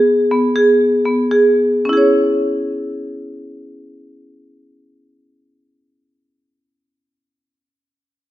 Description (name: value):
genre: contemporary instrumental, contemporary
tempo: 108-128 BPM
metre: 7/4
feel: straight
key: C# minor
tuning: A4 = 440 Hz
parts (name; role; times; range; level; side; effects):
- marimba with hard mallets; arpeggios; 0.0-5.9 s; B3 to C#5; -13 LUFS; equal; none
room: moderate recital hall reverb, RT60 1.8 s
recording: none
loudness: -12 LUFS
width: side -14 dB against mid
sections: 0.0-1.9 A section; 1.9-5.7 B section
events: slowing down 0.0-1.9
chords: 0.0 G#m/B; 1.9 C#m